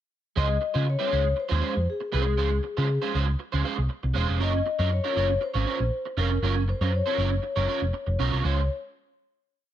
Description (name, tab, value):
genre	disco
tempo	119 BPM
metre	4/4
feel	straight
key	Db major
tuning	A4 = 439 Hz
part	vibraphone with soft mallets	melody	0.4-8.7 s	Ab4 to Eb5	-29 LUFS	left 5 dB	none
part	electric guitar at the edge of break-up	accompaniment	0.4-8.6 s	Ab3 to Db5	-29 LUFS	right 8 dB	ensemble chorus
part	picked electric bass	bass	0.4-8.7 s	Fb1 to Db3	-25 LUFS	equal	none
room	small room ambience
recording	none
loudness	-23 LUFS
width	side -11 dB against mid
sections	0.4-8.4 groove; 8.4-9.7 final chord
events	none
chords	0.4 Dbmaj7; 4.4 Gbmaj7; 8.4 Dbmaj7